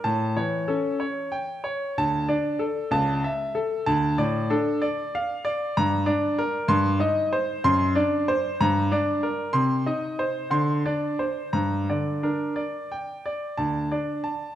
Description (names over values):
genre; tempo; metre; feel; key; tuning
classical, baroque-style suite movement for grand piano; 63 BPM (dotted quarters); 6/8; rubato; D minor, G minor from 5.8 s; A4 = 442 Hz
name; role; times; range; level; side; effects
bright grand piano; solo; 0.0-14.6 s; C#2 to C6; -22 LUFS; equal; none
room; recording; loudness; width
moderate recital hall reverb, RT60 1.9 s; none; -22 LUFS; side -11 dB against mid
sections
0.0-13.6 A section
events
none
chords
0.1 A7; 2.0 D5; 2.9 A/C#; 3.9 Dm; 5.8 Gm; 6.7 Cm/G; 7.6 D7/F#; 8.6 Gm; 9.5 Cm; 10.5 Csus2/D; 11.5 Gm; 13.6 D5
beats
| 0.05 1.01 | 1.97 2.92 | 3.87 4.81 | 5.76 6.70 | 7.64 8.60 | 9.55 10.53 | 11.54 12.57 | 13.59